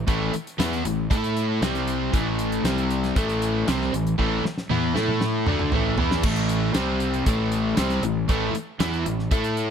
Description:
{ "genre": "classic rock", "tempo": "117 BPM", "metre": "4/4", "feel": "straight", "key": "A minor", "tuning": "A4 = 440 Hz", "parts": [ { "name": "overdriven electric guitar", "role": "riff", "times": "0.0-9.7 s", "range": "A2 to A4", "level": "-26 LUFS", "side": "equal", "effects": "none" }, { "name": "overdriven electric guitar", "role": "riff", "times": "0.0-9.7 s", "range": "A2 to A4", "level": "-26 LUFS", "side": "equal", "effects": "none" }, { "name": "fuzz fingered electric bass", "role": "bass", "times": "0.0-9.7 s", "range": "A1 to A2", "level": "-28 LUFS", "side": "equal", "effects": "overdrive" }, { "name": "damped 70s drum kit", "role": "drums", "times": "0.1-9.7 s", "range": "crash cymbal, hi-hat, kick drum, snare drum, toms", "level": "-26 LUFS", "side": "equal", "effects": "none" } ], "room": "light reverb", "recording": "none", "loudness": "-21 LUFS", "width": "side -8 dB against mid", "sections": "0.0-6.2 A section; 6.2-9.7 A section", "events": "drum fill 4.2-6.2", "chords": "0.0 A5; 1.6 C5; 2.1 A5; 2.7 C5; 3.2 Am; 6.2 A5; 6.8 C5; 7.3 Am" }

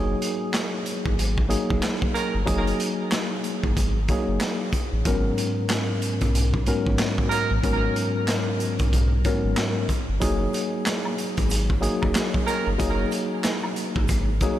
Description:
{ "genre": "hip hop, boom-bap hip-hop", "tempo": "93 BPM", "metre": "4/4", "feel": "swing 60% on 16ths", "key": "unclear", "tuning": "A4 = 441 Hz", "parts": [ { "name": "tine electric piano", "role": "accompaniment", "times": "0.0-14.6 s", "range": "G#2 to A#4", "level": "-25 LUFS", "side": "left 1 dB", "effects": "medium stereo tremolo, cassette tape" }, { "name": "warm sub bass", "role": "bass", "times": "0.0-14.5 s", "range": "F#1 to B1", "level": "-25 LUFS", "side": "equal", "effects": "none" }, { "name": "crunchy breakbeat drum kit", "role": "drums", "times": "0.2-14.6 s", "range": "handclaps, hi-hat, kick drum, snare drum", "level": "-26 LUFS", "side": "equal", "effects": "none" }, { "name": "warm horn section", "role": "stabs", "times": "2.1-2.4, 7.3-7.5, 12.5-12.7 s", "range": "D#3 to A#4", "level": "-30 LUFS", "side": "right 4 dB", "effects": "tape echo" }, { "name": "maracas and woodblock", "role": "percussion", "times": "10.2-14.6 s", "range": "none", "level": "-40 LUFS", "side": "equal", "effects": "none" } ], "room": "light reverb, small room ambience", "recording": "none", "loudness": "-21 LUFS", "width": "side -12 dB against mid", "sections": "0.0-10.2 A section; 10.2-14.6 A section", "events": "none", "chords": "0.0 F#69; 5.1 G#m11; 10.2 F#69" }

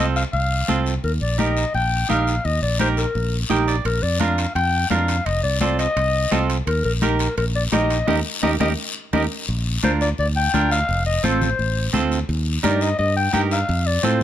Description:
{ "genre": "latin, cumbia", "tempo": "170 BPM", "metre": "4/4", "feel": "straight", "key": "unclear", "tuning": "A4 = 439 Hz", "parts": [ { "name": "growling clarinet", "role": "melody", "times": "0.0-14.2 s", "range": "Bb4 to G5", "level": "-23 LUFS", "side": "left 3 dB", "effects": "none" }, { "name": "semi-hollow electric guitar", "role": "accompaniment", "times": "0.0-14.2 s", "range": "C4 to G5", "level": "-23 LUFS", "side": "right 6 dB", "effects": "warbly pitch drift" }, { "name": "fingered electric bass", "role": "bass", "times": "0.0-14.2 s", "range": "F1 to A2", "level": "-22 LUFS", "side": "equal", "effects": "none" }, { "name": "guiro", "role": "percussion", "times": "0.2-14.2 s", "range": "none", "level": "-30 LUFS", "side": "left 6 dB", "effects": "none" }, { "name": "congas", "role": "percussion", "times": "0.3-14.2 s", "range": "none", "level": "-27 LUFS", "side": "left 5 dB", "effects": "none" }, { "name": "timbales", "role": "percussion", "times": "3.9-9.2 s", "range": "none", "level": "-31 LUFS", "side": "right 8 dB", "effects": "none" } ], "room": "little or no reverb", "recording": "close, detailed microphones", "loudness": "-18 LUFS", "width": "side -11 dB against mid", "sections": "0.0-9.5 A section; 9.5-14.2 B section", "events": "clean electric guitar fill 3.3-3.9; band accent 8.1-9.5; drum fill 8.8-9.5", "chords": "0.0 F; 1.0 Eb; 3.9 Bb; 5.3 F7; 6.7 Eb; 9.5 Bb; 10.9 F; 12.3 Eb; 13.7 F" }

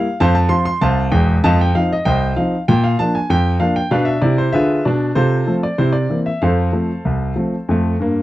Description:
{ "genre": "ragtime piano", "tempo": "96 BPM", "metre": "2/4", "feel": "straight", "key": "F major", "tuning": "A4 = 440 Hz", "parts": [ { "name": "warm grand piano", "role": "solo", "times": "0.0-8.2 s", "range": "E1 to C6", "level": "-14 LUFS", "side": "equal", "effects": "none" } ], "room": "little or no reverb", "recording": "dry, close 1970s-style studio recording", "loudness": "-14 LUFS", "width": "side -15 dB against mid", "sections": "0.0-8.2 A section", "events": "none", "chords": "0.2 F5; 2.7 Bb; 3.9 Bdim7; 5.2 F/C; 5.8 C7; 6.4 F" }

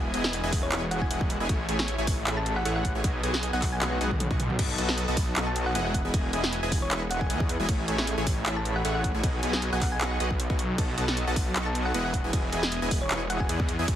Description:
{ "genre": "future bass", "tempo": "155 BPM", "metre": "4/4", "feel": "swing 54% on 16ths, half-time", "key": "unclear", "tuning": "A4 = 440 Hz", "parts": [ { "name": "supersaw stab", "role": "riff", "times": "0.0-14.0 s", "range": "A3 to C#6", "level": "-31 LUFS", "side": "equal", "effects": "sidechain pumping" }, { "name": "wide detuned saw bass", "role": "bass", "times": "0.0-14.0 s", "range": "E1 to E2", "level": "-30 LUFS", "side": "equal", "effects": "chorus, tube saturation, sidechain pumping" }, { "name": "pop drum kit", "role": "drums", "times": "0.1-14.0 s", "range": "crash cymbal, handclaps, hi-hat, ride cymbal, snare drum, toms", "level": "-32 LUFS", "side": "equal", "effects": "none" }, { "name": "electronic kick drum", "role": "drums", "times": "0.5-14.0 s", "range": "none", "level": "-29 LUFS", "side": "equal", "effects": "none" }, { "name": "thumb-piano-like synth pluck", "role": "melody", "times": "0.6-13.8 s", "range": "C#5 to A5", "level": "-36 LUFS", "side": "equal", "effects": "chorus, sidechain pumping, tape echo" } ], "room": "little or no reverb", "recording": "heavily compressed radio sound", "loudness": "-24 LUFS", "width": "side -11 dB against mid", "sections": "0.0-14.0 A section", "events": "drum fill 3.8-4.6", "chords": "0.0 Emaj7; 1.5 Amaj7; 3.0 G#m7/B; 4.6 B7; 5.9 Emaj7; 7.7 Amaj7; 9.2 G#m7/B; 10.8 B7; 12.1 Emaj7" }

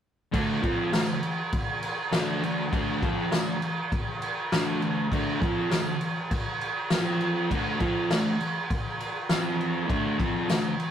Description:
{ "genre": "garage rock duo or trio", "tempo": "100 BPM", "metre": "4/4", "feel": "straight", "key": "unclear", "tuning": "A4 = 436 Hz", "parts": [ { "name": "fuzz guitar", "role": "riff", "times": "0.3-10.7 s", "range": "D3 to F4", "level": "-27 LUFS", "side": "right 1 dB", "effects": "distortion" }, { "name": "vintage drum kit", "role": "drums", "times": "0.3-10.9 s", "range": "crash cymbal, kick drum, snare drum", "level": "-27 LUFS", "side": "equal", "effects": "none" }, { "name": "tambourine", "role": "percussion", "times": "0.9-10.6 s", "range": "none", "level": "-43 LUFS", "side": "left 6 dB", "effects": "none" } ], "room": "light reverb", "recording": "rough rehearsal-room recording, warm saturation", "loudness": "-25 LUFS", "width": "side -9 dB against mid", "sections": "0.3-10.9 A section", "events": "none", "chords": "0.3 D5; 6.9 F5; 7.5 D5; 9.3 F5; 9.9 D5" }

